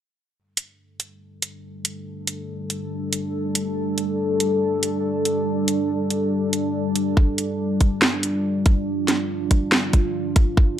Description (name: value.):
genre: deep dubstep.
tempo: 141 BPM.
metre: 4/4.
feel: swing 54% on 16ths, half-time.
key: unclear.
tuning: A4 = 440 Hz.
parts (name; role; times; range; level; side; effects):
deep dark ambient pad; sustained chords; 1.9-10.8 s; G3 to A4; -23 LUFS; equal; chorus, built-in reverb.
garage drum kit; drums; 0.6-10.5 s; hi-hat, snare drum; -21 LUFS; right 1 dB; overdrive.
electronic kick drum; drums; 7.2-10.7 s; none; -16 LUFS; equal; overdrive.
room: moderate digital room reverb, RT60 1.2 s.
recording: dark, warm production.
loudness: -20 LUFS.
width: side -10 dB against mid.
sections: 0.4-10.8 A section.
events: filter sweep on ambient pad 0.4-10.8.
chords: 0.4 G5.